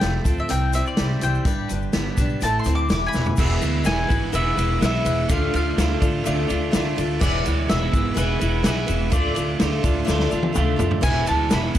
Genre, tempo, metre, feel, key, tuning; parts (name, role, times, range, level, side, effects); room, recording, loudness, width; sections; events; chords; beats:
folk rock and heartland rock; 125 BPM; 4/4; straight; A4 = 438 Hz
mandolin; melody; 0.0-11.8 s; B4 to D6; -27 LUFS; left 1 dB
picked swing-style acoustic guitar; accompaniment; 0.0-11.8 s; A2 to D5; -28 LUFS; left 6 dB
electric guitar at the edge of break-up; riff; 0.0-11.8 s; E2 to F4; -27 LUFS; right 8 dB; analog chorus
upright bass; bass; 0.0-11.8 s; E1 to F2; -24 LUFS; equal
vintage drum kit; drums; 0.0-11.8 s; crash cymbal, hi-hat, kick drum, ride cymbal, snare drum, toms; -24 LUFS; equal
tube shaker; percussion; 0.0-11.8 s; -40 LUFS; left 14 dB
light reverb, small room ambience; -19 LUFS; side -12 dB against mid
0.0-3.4 A section; 3.4-11.8 B section
mandolin solo 0.0-3.4; drum fill 3.1, 10.1-11.0
0.5 C; 1.5 G; 2.4 Am; 2.9 E; 5.3 Dm; 7.2 E; 9.1 Dm; 11.0 E
0.02 0.50 0.98 | 1.46 1.94 2.42 2.90 | 3.38 3.86 4.34 4.82 | 5.30 5.78 6.26 6.74 | 7.21 7.69 8.17 8.65 | 9.13 9.61 10.09 10.56 | 11.04 11.52